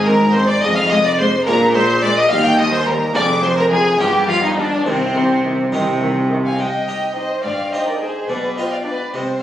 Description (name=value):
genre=classical, baroque-style concerto movement with solo episodes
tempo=71 BPM (dotted quarters)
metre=6/8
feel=straight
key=C minor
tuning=A4 = 440 Hz
part: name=rich studio violin section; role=melody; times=0.0-9.1 s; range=G4 to G6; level=-23 LUFS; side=left 2 dB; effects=none
part: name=rich violin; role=melody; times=0.0-9.4 s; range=C4 to Ab5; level=-21 LUFS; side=equal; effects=none
part: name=harpsichord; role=accompaniment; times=0.0-9.4 s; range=Eb2 to Ab4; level=-24 LUFS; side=equal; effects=none
part: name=rich chamber double bass section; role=bass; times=0.0-9.4 s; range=F1 to Eb2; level=-26 LUFS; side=right 2 dB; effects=none
part: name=rich studio cello section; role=bass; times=0.0-9.4 s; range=Eb2 to C3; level=-20 LUFS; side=right 1 dB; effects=none
part: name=rich chamber violin section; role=second line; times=0.1-9.4 s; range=C4 to G5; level=-20 LUFS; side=left 1 dB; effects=none
part: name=rich chamber viola section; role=accompaniment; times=0.1-9.1 s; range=Eb3 to Eb4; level=-25 LUFS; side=equal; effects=none
room=moderate recital hall reverb, RT60 1.5 s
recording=recorded on a phone in the room, club reverb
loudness=-14 LUFS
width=side -11 dB against mid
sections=0.0-6.6 A section; 6.6-9.4 B section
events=none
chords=0.0 Ab; 0.6 Fm; 1.5 Bb7; 2.3 Eb; 3.1 Fm; 4.0 G7; 4.9 Cm; 8.3 G7/B